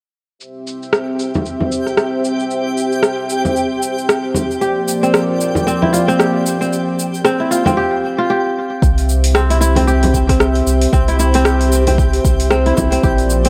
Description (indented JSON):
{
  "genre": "organic downtempo",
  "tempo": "114 BPM",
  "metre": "4/4",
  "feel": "swing 58% on 16ths",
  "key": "C major",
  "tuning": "A4 = 440 Hz",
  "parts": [
    { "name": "warm analog pad", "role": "sustained chords", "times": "0.4-13.5 s", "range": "F3 to E5", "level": "-22 LUFS", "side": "equal", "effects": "chorus, sidechain pumping" },
    { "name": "deep house drum kit", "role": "drums", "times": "0.4-13.5 s", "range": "cabasa, hi-hat, rim click", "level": "-22 LUFS", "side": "equal", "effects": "overdrive, low-pass filter on perc, low-pass filter on snare, low-pass filter on hats" },
    { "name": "twinkling granular texture", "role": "texture", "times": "1.2-13.5 s", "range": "G4 to G5", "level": "-29 LUFS", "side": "equal", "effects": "built-in reverb" },
    { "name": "frame drum", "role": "percussion", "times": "1.4-12.9 s", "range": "none", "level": "-23 LUFS", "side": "equal", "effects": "none" },
    { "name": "kora", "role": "arpeggios", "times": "4.6-13.5 s", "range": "C4 to G4", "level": "-19 LUFS", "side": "equal", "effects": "delay" },
    { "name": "warm sub bass", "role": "bass", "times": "8.8-13.5 s", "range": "Bb1 to C2", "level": "-18 LUFS", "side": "equal", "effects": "sidechain pumping" },
    { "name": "electronic kick drum", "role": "drums", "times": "8.8-13.2 s", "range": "none", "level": "-18 LUFS", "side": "equal", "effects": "overdrive" }
  ],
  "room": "light reverb",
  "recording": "none",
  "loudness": "-15 LUFS",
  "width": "mono",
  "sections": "0.4-8.8 A section; 8.8-13.5 B section",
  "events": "none",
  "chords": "0.4 C; 4.6 Bb; 8.8 C",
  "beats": "| 0.40 0.93 1.46 1.98 | 2.51 3.03 3.56 4.09 | 4.61 5.14 5.67 6.19 | 6.72 7.25 7.77 8.30 | 8.82 9.35 9.88 10.40 | 10.93 11.46 11.98 12.51 | 13.03"
}